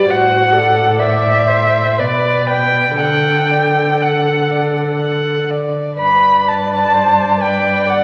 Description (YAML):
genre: classical, slow romantic movement for string quartet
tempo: 59-65 BPM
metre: 3/4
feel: rubato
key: G major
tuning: A4 = 442 Hz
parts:
  - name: muted violin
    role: melody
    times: 0.0-8.0 s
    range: D5 to B5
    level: -16 LUFS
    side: equal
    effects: none
  - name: muted violin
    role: second line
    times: 0.0-8.0 s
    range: B4 to F#5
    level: -24 LUFS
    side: equal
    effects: none
  - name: muted viola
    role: accompaniment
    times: 0.0-8.0 s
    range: F#4 to D5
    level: -21 LUFS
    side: equal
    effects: none
  - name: muted cello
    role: bass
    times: 0.0-8.0 s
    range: G2 to D3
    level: -23 LUFS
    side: equal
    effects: none
room: wet recital hall reverb, RT60 1.4 s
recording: vinyl crackle, lossy compression artefacts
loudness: -14 LUFS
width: mono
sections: 0.0-8.0 A section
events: none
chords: 0.1 D7/A; 2.0 G/B; 3.0 D; 6.0 G